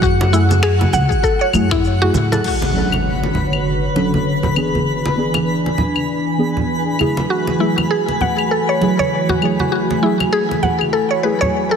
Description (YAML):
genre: organic downtempo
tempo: 99 BPM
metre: 4/4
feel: swing 59% on 16ths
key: F# minor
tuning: A4 = 439 Hz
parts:
  - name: deep mellow chord stab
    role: accompaniment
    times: 0.0-11.8 s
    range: E3 to A4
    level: -21 LUFS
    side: right 1 dB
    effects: chorus, cassette tape, sidechain pumping, ping-pong delay
  - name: mallet-like synth pluck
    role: arpeggios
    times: 0.0-2.4, 7.3-11.8 s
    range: E4 to F#5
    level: -19 LUFS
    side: left 1 dB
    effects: chorus, ping-pong delay
  - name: upright bass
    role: bass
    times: 0.0-2.4 s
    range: C#2 to A2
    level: -16 LUFS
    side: equal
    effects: sidechain pumping
  - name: electronic kick drum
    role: drums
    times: 0.0-1.8 s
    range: none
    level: -20 LUFS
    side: equal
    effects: none
  - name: organic electronic drum kit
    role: drums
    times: 0.0-10.9 s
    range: claves, crash cymbal, finger snaps, shaker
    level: -25 LUFS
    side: left 6 dB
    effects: none
  - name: twinkling granular texture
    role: texture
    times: 0.0-11.8 s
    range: F#4 to B5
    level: -24 LUFS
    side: left 1 dB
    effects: built-in reverb
  - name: congas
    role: percussion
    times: 0.2-11.5 s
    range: none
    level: -24 LUFS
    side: right 2 dB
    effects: none
  - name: airy breathy pad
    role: sustained chords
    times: 2.9-11.8 s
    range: D3 to G#5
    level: -21 LUFS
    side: equal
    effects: chorus, phaser, sidechain pumping
  - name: impact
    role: sound effects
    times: 2.4-4.9 s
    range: none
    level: -24 LUFS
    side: equal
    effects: none
room: wet concert hall reverb, RT60 2.4 s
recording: heavily compressed radio sound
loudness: -14 LUFS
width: side -7 dB against mid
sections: 0.0-2.4 A section; 2.4-11.8 B section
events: impact 2.4-4.9; filter sweep on analog synth pad 2.4-11.8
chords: 0.0 F#m9; 2.4 Dmaj7; 4.9 E7; 7.3 F#m9